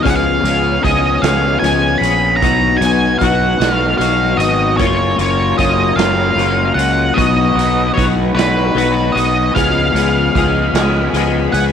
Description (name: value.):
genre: psychedelic rock.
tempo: 50 BPM (dotted quarters).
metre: 6/8.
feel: straight.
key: B lydian.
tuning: A4 = 440 Hz.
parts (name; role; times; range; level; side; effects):
octave-fuzz lead guitar; melody; 0.0-11.6 s; B4 to B5; -16 LUFS; right 2 dB; distortion, slapback echo.
ensemble organ-string; sustained chords; 0.0-11.7 s; F#4 to B5; -26 LUFS; right 14 dB; ensemble chorus.
clean electric guitar; riff; 0.0-11.7 s; B2 to G#4; -17 LUFS; left 11 dB; rotary speaker.
fuzz fingered electric bass; bass; 0.1-11.7 s; F#1 to C#2; -18 LUFS; right 2 dB; overdrive, tube saturation.
raw garage drum kit; drums; 0.1-11.7 s; hi-hat, kick drum, snare drum; -21 LUFS; right 6 dB; none.
room: studio reverb.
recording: 1960s-style stereo with parts hard left and right.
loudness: -12 LUFS.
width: side -8 dB against mid.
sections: 0.0-11.7 A section.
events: none.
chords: 0.0 C#7; 2.4 B; 4.8 F#maj7; 7.2 B; 9.6 C#7.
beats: | 0.04 1.23 | 2.42 3.61 | 4.80 5.99 | 7.18 8.37 | 9.56 10.75.